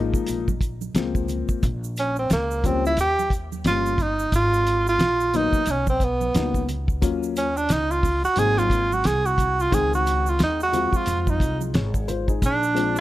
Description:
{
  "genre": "hip hop, jazz-hop",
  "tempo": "89 BPM",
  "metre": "4/4",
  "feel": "swing 59% on 16ths",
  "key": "Eb dorian",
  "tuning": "A4 = 440 Hz",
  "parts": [
    { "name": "dark baby grand piano", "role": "accompaniment", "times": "0.0-13.0 s", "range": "Eb3 to Db5", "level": "-28 LUFS", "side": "left 7 dB", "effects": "none" },
    { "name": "upright bass", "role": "bass", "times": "0.0-13.0 s", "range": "G1 to F2", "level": "-27 LUFS", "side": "equal", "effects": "none" },
    { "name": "cloth-damped thuddy drum kit", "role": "drums", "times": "0.1-12.9 s", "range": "hi-hat, kick drum, snare drum", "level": "-24 LUFS", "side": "equal", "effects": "none" },
    { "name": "tube shaker and congas", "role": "percussion", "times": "0.1-13.0 s", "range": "none", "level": "-37 LUFS", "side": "right 8 dB", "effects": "none" },
    { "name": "breathy tenor saxophone", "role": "melody", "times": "2.0-12.9 s", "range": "Bb3 to Ab4", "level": "-22 LUFS", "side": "right 2 dB", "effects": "none" }
  ],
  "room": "light reverb, studio ambience",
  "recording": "none",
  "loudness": "-20 LUFS",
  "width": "side -15 dB against mid",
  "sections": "0.0-13.0 A section",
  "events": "tenor saxophone solo 0.0-13.0",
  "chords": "0.0 Gbmaj7 (rootless); 1.6 Bbm; 3.0 Eb7; 4.3 Abm7; 7.0 Ebm7; 8.4 Ab7; 9.7 Dbmaj9; 12.4 Bb7"
}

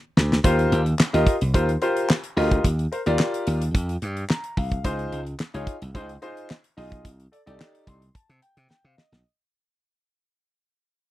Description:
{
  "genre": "early-eighties boogie funk",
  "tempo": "109 BPM",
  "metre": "4/4",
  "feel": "straight",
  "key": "unclear",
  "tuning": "A4 = 440 Hz",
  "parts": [
    { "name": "slap bass", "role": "bass", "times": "0.2-9.2 s", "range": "B1 to C3", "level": "-24 LUFS", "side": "equal", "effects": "none" },
    { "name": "damped 70s drum kit", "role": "drums", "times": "0.2-9.2 s", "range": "handclaps, hi-hat, kick drum, snare drum", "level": "-21 LUFS", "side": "equal", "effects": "none" },
    { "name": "clear grand piano", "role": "accompaniment", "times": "0.4-9.2 s", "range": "Eb4 to C6", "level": "-25 LUFS", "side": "left 1 dB", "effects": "none" }
  ],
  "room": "little or no reverb",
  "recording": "dry, close 1970s-style studio recording",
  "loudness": "-20 LUFS",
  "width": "side -15 dB against mid",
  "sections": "0.0-9.2 A section",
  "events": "fade-out 0.0-9.2; drum fill 0.0-0.4, 8.7-9.2; grand piano fill 4.0-4.8, 7.6-9.2",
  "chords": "0.4 Eb69; 4.8 Dbmaj9; 7.0 Cm69"
}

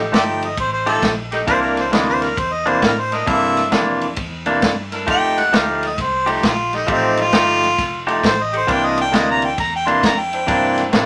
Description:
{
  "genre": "electric blues shuffle",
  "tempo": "133 BPM",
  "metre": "4/4",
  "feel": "swing 65% on 8ths",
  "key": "C mixolydian",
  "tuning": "A4 = 440 Hz",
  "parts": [
    { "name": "warm saxophone section", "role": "stabs", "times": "0.0-11.1 s", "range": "D4 to C5", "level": "-27 LUFS", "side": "equal", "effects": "none" },
    { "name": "vintage muted fingered electric bass", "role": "bass", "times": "0.0-11.1 s", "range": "F1 to A2", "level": "-34 LUFS", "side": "equal", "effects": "none" },
    { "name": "warm harmonica", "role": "melody", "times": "0.1-11.1 s", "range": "C4 to C6", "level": "-21 LUFS", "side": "equal", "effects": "none" },
    { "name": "electric guitar through a small old amp", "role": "riff", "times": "0.1-11.1 s", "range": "C3 to G4", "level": "-21 LUFS", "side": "equal", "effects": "none" },
    { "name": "vintage drum kit", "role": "drums", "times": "0.1-11.1 s", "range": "kick drum, ride cymbal, snare drum", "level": "-24 LUFS", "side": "equal", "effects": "none" }
  ],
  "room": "moderate studio reverb, RT60 0.5 s",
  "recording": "none",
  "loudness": "-18 LUFS",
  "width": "mono",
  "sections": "0.0-11.1 A section",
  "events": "harmonica solo 0.0-11.1",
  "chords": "0.0 F9; 1.5 C9; 5.1 F9; 8.7 C9"
}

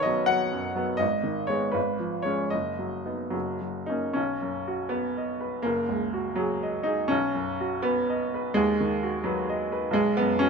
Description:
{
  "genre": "classical, romantic character piece for solo piano",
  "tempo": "70-87 BPM (dotted quarters)",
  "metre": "6/8",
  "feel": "rubato",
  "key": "B major",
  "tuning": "A4 = 440 Hz",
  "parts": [
    { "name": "bright baby grand piano", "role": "solo", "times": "0.0-10.5 s", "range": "F#1 to F#5", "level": "-25 LUFS", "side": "equal", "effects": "none" }
  ],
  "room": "moderate large studio reverb, RT60 1.1 s",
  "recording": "minimal, uncompressed stereo recording",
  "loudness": "-25 LUFS",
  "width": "side -5 dB against mid",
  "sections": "0.0-4.2 A section; 4.2-10.5 B section",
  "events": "none",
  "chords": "0.0 B; 1.0 G#m; 1.8 C#7/G#; 2.5 B/F#; 3.3 F#; 4.2 B; 5.6 F#69; 7.1 B; 8.6 B/D#; 9.9 G#m7/B"
}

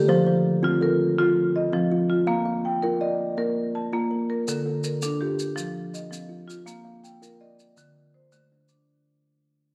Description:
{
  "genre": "southern african traditional, mbira-style interlocking cycle",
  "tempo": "109 BPM (dotted quarters)",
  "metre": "12/8",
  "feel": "straight",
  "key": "F mixolydian",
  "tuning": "A4 = 440 Hz",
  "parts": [
    { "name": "kalimba", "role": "arpeggios", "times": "0.0-9.1 s", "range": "D3 to F5", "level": "-30 LUFS", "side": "equal", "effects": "none" },
    { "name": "marimba with medium hard mallets", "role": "arpeggios", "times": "0.0-9.1 s", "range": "D3 to A5", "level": "-26 LUFS", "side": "equal", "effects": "none" },
    { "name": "maracas", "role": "percussion", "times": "4.5-8.9 s", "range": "none", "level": "-40 LUFS", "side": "equal", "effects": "none" }
  ],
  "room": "wet echo chamber reverb, RT60 1.6 s, studio ambience",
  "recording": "none",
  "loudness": "-24 LUFS",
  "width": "mono",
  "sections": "0.1-8.9 A section",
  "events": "fade-out 0.1-8.9",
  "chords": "0.1 F; 2.3 Bb; 4.5 Dm; 5.6 F5; 6.7 Bb; 7.8 D5"
}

